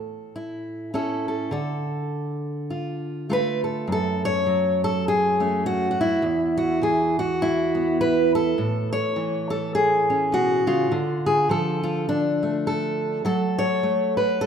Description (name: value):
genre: folk, solo fingerstyle acoustic guitar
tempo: 102 BPM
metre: 4/4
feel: swing 58% on 8ths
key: A major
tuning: A4 = 440 Hz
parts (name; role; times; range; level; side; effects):
- fingerpicked steel-string acoustic guitar; solo; 0.0-14.5 s; E2 to C#5; -21 LUFS; equal; none
room: moderate concert hall reverb, RT60 1.7 s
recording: minimal, uncompressed stereo recording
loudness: -21 LUFS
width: side -7 dB against mid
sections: 0.0-3.9 A section; 3.9-14.5 B section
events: none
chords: 0.0 A; 1.5 Dm; 3.9 F#m; 6.2 E5; 8.6 A; 10.9 Dm; 13.2 F#m